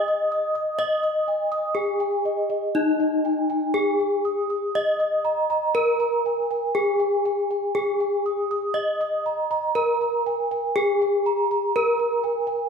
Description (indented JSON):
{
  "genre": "gamelan",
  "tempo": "60 BPM",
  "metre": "4/4",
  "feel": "straight",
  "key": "unclear",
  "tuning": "A4 = 440 Hz",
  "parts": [
    { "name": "gamelan-type bronze metallophone", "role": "melody", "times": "0.0-12.7 s", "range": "Eb4 to Eb5", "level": "-22 LUFS", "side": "left 2 dB", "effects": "none" },
    { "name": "gamelan-type bronze metallophone", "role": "arpeggios", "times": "0.0-12.7 s", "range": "Eb5 to Eb6", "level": "-28 LUFS", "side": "right 5 dB", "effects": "none" }
  ],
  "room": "wet concert hall reverb, RT60 1.8 s",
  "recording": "minimal, uncompressed stereo recording",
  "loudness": "-21 LUFS",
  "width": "side -6 dB against mid",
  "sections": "0.0-2.7 A section; 2.7-12.7 B section",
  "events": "none",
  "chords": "none"
}